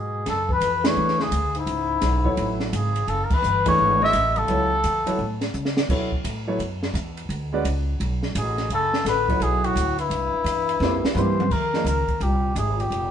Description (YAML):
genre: modal jazz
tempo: 171 BPM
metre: 4/4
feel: swing 65% on 8ths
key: F# minor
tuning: A4 = 440 Hz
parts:
  - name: trumpet with cup mute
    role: melody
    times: 0.0-5.4, 8.4-13.1 s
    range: E4 to E5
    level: -23 LUFS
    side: left 1 dB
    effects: none
  - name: warm bass clarinet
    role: second line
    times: 0.0-5.4, 8.4-13.1 s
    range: G2 to G#3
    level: -29 LUFS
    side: left 4 dB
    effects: none
  - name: upright bass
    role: bass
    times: 0.0-13.1 s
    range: F1 to C#3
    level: -26 LUFS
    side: equal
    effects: none
  - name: compact cocktail drum kit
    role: drums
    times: 0.3-13.0 s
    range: crash cymbal, hi-hat, kick drum, ride cymbal, snare drum, toms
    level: -28 LUFS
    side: equal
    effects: none
  - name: warm baby grand piano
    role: accompaniment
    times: 0.8-11.9 s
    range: E3 to D5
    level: -27 LUFS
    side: right 2 dB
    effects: none
room: moderate stone room reverb, RT60 1.0 s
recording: band playing live in one room, nothing above 10.7 kHz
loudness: -20 LUFS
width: side -9 dB against mid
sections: 0.3-11.5 A section; 11.5-13.1 B section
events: band accent 0.8, 3.3; drum fill 5.5-5.9, 10.8-11.5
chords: 0.3 F#m9; 5.9 Bm9; 10.1 C7; 11.5 Fm11